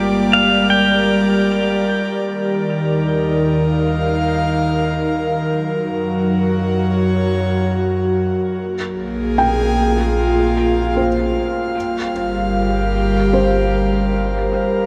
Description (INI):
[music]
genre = ambient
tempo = 76 BPM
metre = 4/4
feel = straight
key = Eb major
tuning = A4 = 442 Hz
[part]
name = pedal steel guitar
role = melody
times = 0.0-1.4 s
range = G4 to G5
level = -21 LUFS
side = equal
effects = tape echo
[part]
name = airy breathy pad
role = sustained chords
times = 0.0-14.9 s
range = Eb3 to F5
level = -19 LUFS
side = equal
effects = chorus
[part]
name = deep rumbling drone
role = bass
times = 0.0-14.9 s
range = G1 to Gb2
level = -26 LUFS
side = equal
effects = built-in reverb
[part]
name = felt-muted upright piano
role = arpeggios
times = 9.4-14.9 s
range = C5 to G5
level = -25 LUFS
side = equal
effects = tape echo
[sound]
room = wet huge ambient reverb, RT60 7.9 s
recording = none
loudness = -17 LUFS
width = mono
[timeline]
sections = 0.0-2.3 A section; 2.3-14.9 B section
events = fade-out on synth drone 0.0-2.3; fade-in on synth drone 2.3-14.9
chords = 0.0 Gm; 2.3 Ebsus2; 5.4 Gb; 8.6 Bb5; 11.8 Gm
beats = 0.70 1.49 | 2.28 3.07 3.86 4.65 | 5.44 6.23 7.02 7.80 | 8.60 9.38 10.17 10.96 | 11.75 12.54 13.33 14.12